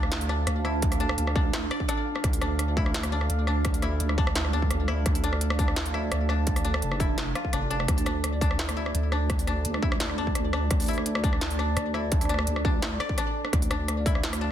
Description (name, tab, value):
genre	half-time drum and bass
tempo	170 BPM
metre	4/4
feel	half-time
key	D minor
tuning	A4 = 441 Hz
part	dark analog pad	sustained chords	0.0-14.5 s	D4 to A5	-34 LUFS	right 2 dB	chorus, phaser, sidechain pumping
part	koto	arpeggios	0.0-14.5 s	D4 to D5	-34 LUFS	left 3 dB	tape echo
part	deep soft wobble bass	bass	0.0-14.5 s	F1 to D2	-28 LUFS	equal	chorus
part	industrial drum kit	drums	0.0-14.4 s	hi-hat, rim click, snare drum	-31 LUFS	equal	none
part	pulsing gated texture	texture	0.1-14.5 s	F3 to F5	-38 LUFS	right 4 dB	chorus, built-in reverb
part	electronic kick drum	drums	0.8-14.1 s	none	-28 LUFS	equal	distortion
room	light reverb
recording	dense, heavily limited modern master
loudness	-24 LUFS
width	side -10 dB against mid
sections	0.0-14.5 A section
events	none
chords	0.0 Dmadd9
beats	0.12 0.47 | 0.82 1.18 1.53 1.88 | 2.24 2.59 2.94 3.29 | 3.65 4.00 4.35 4.71 | 5.06 5.41 5.76 6.12 | 6.47 6.82 7.18 7.53 | 7.88 8.24 8.59 8.94 | 9.29 9.65 10.00 10.35 | 10.71 11.06 11.41 11.77 | 12.12 12.47 12.82 13.18 | 13.53 13.88 14.24